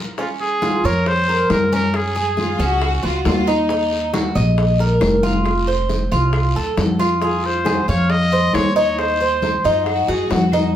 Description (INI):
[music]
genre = latin, Cuban son and guajira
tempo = 136 BPM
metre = 4/4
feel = straight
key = Bb minor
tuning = A4 = 440 Hz
[part]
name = bright trumpet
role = melody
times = 0.2-2.8, 7.2-9.9 s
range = F4 to Eb5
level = -21 LUFS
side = equal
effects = plate reverb
[part]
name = Cuban tres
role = arpeggios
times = 0.2-10.7 s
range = Db4 to F5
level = -20 LUFS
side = right 1 dB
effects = none
[part]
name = bongos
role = percussion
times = 0.2-10.8 s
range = none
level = -28 LUFS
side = left 3 dB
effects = none
[part]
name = congas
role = percussion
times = 0.2-10.7 s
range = none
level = -25 LUFS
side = left 2 dB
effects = none
[part]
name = guiro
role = percussion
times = 0.2-10.7 s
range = none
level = -34 LUFS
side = left 3 dB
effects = none
[part]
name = claves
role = percussion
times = 0.6-10.7 s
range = none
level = -38 LUFS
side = left 7 dB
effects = none
[part]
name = upright bass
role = bass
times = 0.8-10.8 s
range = F1 to Gb2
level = -20 LUFS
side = equal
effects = none
[part]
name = warm studio violin section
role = second line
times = 2.4-4.4, 9.4-10.6 s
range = Eb4 to Ab4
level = -24 LUFS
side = left 2 dB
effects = none
[sound]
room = wet studio reverb, RT60 0.8 s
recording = heard from further back in the room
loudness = -15 LUFS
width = side -10 dB against mid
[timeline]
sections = 0.2-10.8 A section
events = band accent 0.0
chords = 0.2 Bbm; 1.9 Gbsus2; 3.7 Ebm; 5.5 F; 7.2 Fm; 9.0 Cdim/Eb